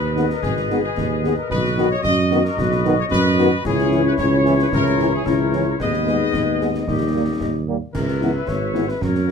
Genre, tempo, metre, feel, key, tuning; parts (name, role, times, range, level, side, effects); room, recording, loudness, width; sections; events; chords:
military-style march for wind band; 112 BPM; 2/4; straight; G# minor; A4 = 438 Hz
clear trumpet section; melody; 0.0-9.3 s; G#4 to D#5; -26 LUFS; left 1 dB
clear woodwind section; second line; 0.0-9.3 s; E4 to E5; -25 LUFS; left 4 dB
mellow tuba; bass; 0.0-9.3 s; G#1 to F#2; -21 LUFS; right 4 dB
warm trombone section; sustained chords; 0.1-9.3 s; C#3 to C#4; -23 LUFS; equal
dark French horn section; accompaniment; 0.2-9.3 s; E3 to G#4; -22 LUFS; left 6 dB
concert snare drum, concert bass drum and clash cymbals; drums; 0.2-9.3 s; -28 LUFS; left 1 dB
light reverb; close, detailed microphones; -17 LUFS; side -6 dB against mid
0.0-9.3 A section
0.0 G#m; 1.5 B; 3.6 C#m; 5.8 G#m/D#; 6.9 D#; 7.9 C#m7